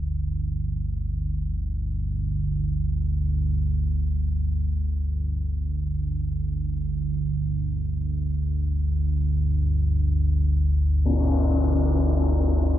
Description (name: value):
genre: dark ambient drone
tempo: free time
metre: none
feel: none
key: unclear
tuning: A4 = 440 Hz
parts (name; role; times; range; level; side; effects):
- deep rumbling drone; drone; 0.0-12.8 s; G1 to D2; -22 LUFS; equal; built-in reverb
- tam-tam; percussion; 11.1-11.2 s; none; -24 LUFS; left 3 dB; low-pass filter on cymbals
room: wet cathedral reverb, RT60 5.9 s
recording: faint mains hum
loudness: -22 LUFS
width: side -12 dB against mid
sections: 0.0-12.8 A section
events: none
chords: 0.0 G5